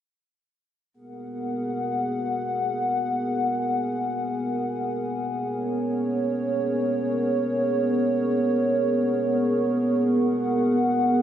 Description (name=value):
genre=glitch hop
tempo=free time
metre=none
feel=none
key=G# minor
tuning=A4 = 440 Hz
part: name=dark analog pad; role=sustained chords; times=1.1-11.2 s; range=B3 to F#5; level=-23 LUFS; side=equal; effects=chorus, vintage 12-bit sampler grit
part: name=warbly tape-like pad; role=texture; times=0.9-11.2 s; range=B3 to C#6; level=-33 LUFS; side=right 1 dB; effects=chorus, built-in reverb
room=wet plate reverb, RT60 2.9 s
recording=none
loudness=-22 LUFS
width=side -10 dB against mid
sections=0.9-11.2 A section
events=fade-in on ambient pad 0.9-11.2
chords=0.9 G#m9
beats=free time